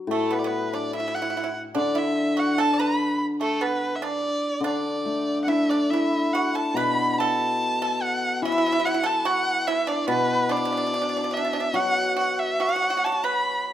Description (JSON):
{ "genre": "chinese traditional, Chinese chamber ensemble", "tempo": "72 BPM", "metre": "2/4", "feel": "rubato", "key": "D gong mode", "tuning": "A4 = 440 Hz", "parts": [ { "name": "hammered dulcimer", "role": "accompaniment", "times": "0.0-13.7 s", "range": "A2 to E4", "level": "-26 LUFS", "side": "left 2 dB", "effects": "none" }, { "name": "rich erhu", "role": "melody", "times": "0.1-13.7 s", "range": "A4 to B5", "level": "-25 LUFS", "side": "equal", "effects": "none" }, { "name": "pipa", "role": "second line", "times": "0.1-13.6 s", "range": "A3 to D5", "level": "-29 LUFS", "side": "right 6 dB", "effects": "none" } ], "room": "moderate recital hall reverb, RT60 1.4 s", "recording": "none", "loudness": "-21 LUFS", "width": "side -11 dB against mid", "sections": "0.0-6.8 A section; 6.8-13.7 B section", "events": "none", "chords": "none" }